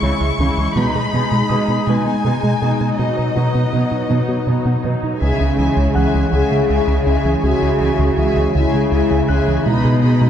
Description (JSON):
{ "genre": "cinematic, hybrid orchestral and electronic film score", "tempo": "54 BPM (dotted quarters)", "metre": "6/8", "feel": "straight", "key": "C# minor", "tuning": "A4 = 440 Hz", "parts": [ { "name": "warm chamber violin section", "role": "melody", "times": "0.0-4.8 s", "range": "D#5 to C#6", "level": "-25 LUFS", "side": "left 4 dB", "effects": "none" }, { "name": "warm symphonic viola section", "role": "accompaniment", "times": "0.0-10.3 s", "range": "F#3 to G#4", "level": "-25 LUFS", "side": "right 1 dB", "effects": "none" }, { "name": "lush unison pad", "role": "sustained chords", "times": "0.0-10.3 s", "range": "G#3 to D#5", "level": "-24 LUFS", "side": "left 1 dB", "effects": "chorus" }, { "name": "soft round pluck", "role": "arpeggios", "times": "0.0-10.3 s", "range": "C#3 to B4", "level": "-24 LUFS", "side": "right 2 dB", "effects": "chorus, digital delay" }, { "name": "round analog bass", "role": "riff", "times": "0.0-10.3 s", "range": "C#2 to B3", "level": "-19 LUFS", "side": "right 1 dB", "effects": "none" }, { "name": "warm symphonic cello section", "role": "bass", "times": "0.0-10.3 s", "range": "B2 to C#3", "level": "-21 LUFS", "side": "right 1 dB", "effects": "none" }, { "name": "bright concert grand piano", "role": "texture", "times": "0.0-10.3 s", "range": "D#5 to F#6", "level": "-32 LUFS", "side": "left 2 dB", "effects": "digital delay" }, { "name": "warm symphonic violin section", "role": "second line", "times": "5.2-10.3 s", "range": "D#5 to B5", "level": "-25 LUFS", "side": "left 2 dB", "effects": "none" }, { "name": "dark French horn section", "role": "sustained chords", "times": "5.2-10.3 s", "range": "C#4 to G#4", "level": "-21 LUFS", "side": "left 4 dB", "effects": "none" } ], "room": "wet scoring stage reverb, RT60 1.8 s", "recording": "heard from further back in the room, nothing above 10.6 kHz", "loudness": "-14 LUFS", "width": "side -9 dB against mid", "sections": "0.0-5.2 A section; 5.2-10.3 A section", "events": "none", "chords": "0.0 C#m; 0.8 G#m/B; 3.0 B; 5.2 C#m; 9.7 G#m/B" }